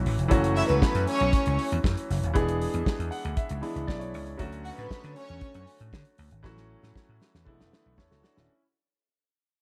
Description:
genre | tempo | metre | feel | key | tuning
disco | 117 BPM | 4/4 | straight | unclear | A4 = 441 Hz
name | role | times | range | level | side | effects
bright concert grand piano | accompaniment | 0.0-8.6 s | D3 to F#5 | -33 LUFS | equal | plate reverb
vintage slap bass | bass | 0.0-8.5 s | D#1 to D3 | -32 LUFS | equal | none
damped 70s drum kit | drums | 0.1-8.5 s | hi-hat, kick drum, snare drum | -30 LUFS | equal | none
rich studio string section | second line | 0.6-1.6, 4.6-5.6 s | B3 to F#5 | -31 LUFS | equal | plate reverb
room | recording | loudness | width
small room ambience | none | -27 LUFS | mono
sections
0.0-8.5 A section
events
fade-out 0.0-8.5; grand piano fill 2.9-4.4; drum fill 6.4-8.5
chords
0.3 F#m7; 2.4 E7; 4.4 Dmaj7; 6.4 A6; 7.5 E7sus4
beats
| 0.31 0.82 1.33 1.84 | 2.35 2.87 3.38 3.89 | 4.40 4.91 5.42 5.93 | 6.45 6.96 7.47 7.98

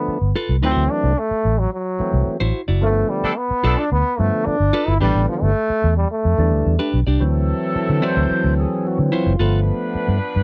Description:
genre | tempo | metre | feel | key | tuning
funk | 110 BPM | 4/4 | straight | D mixolydian | A4 = 440 Hz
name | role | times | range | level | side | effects
bright trombone | melody | 0.0-6.9 s | F3 to E4 | -23 LUFS | equal | none
percussive tonewheel organ | stabs | 0.0-10.2 s | D3 to C5 | -24 LUFS | equal | overdrive, slow rotary speaker
vintage muted fingered electric bass | bass | 0.1-10.4 s | F#1 to D3 | -20 LUFS | equal | none
clean electric guitar | accompaniment | 0.4-9.6 s | D4 to D5 | -26 LUFS | equal | none
dark horn section | second line | 3.2-3.8, 7.2-10.4 s | F3 to B4 | -29 LUFS | equal | none
room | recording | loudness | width
light reverb | dry, close 1970s-style studio recording | -19 LUFS | mono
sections
0.0-7.2 A section; 7.2-10.4 B section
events
tonewheel organ solo 7.2-10.4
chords
0.0 G9; 0.6 D9; 2.8 G9; 5.0 A9sus4; 7.2 D9; 9.4 G9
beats
0.08 | 0.63 1.18 1.73 2.27 | 2.82 3.37 3.92 4.46 | 5.01 5.56 6.11 6.66 | 7.21 7.75 8.30 8.85 | 9.40 9.95

